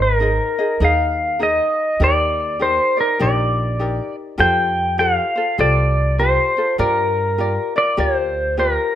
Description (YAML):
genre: Hawaiian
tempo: 100 BPM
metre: 4/4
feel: swing 64% on 8ths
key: unclear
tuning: A4 = 441 Hz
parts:
  - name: pedal steel guitar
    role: melody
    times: 0.0-9.0 s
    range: Bb4 to G5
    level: -17 LUFS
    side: equal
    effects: plate reverb
  - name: ukulele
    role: accompaniment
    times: 0.0-9.0 s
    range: Eb4 to Eb5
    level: -24 LUFS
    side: left 3 dB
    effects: plate reverb
  - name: upright bass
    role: bass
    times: 0.0-8.8 s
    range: Ab1 to G2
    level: -21 LUFS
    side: right 1 dB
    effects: none
room: moderate small room reverb, RT60 0.5 s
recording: rough home demo mix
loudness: -15 LUFS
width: side -11 dB against mid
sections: 0.0-9.0 A section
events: none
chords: 0.0 Absus2; 2.0 Ebmaj7; 4.4 Fadd9; 6.8 Gm7